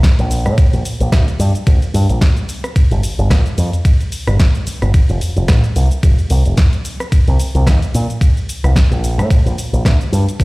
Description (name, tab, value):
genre	nu-disco, nu disco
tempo	110 BPM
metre	4/4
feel	swing 56% on 16ths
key	F major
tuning	A4 = 441 Hz
part	electronic kick drum	drums	0.0-10.4 s	none	-12 LUFS	equal	none
part	house drum kit	drums	0.0-10.4 s	cabasa, hi-hat, ride cymbal, rim click, snare drum	-23 LUFS	equal	none
part	picked electric bass with an envelope filter	bass	0.2-10.4 s	F1 to Bb2	-14 LUFS	equal	none
room	little or no reverb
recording	played on a big sound system in a bare room, stone room reverb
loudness	-12 LUFS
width	side -23 dB against mid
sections	0.0-10.4 A section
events	none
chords	none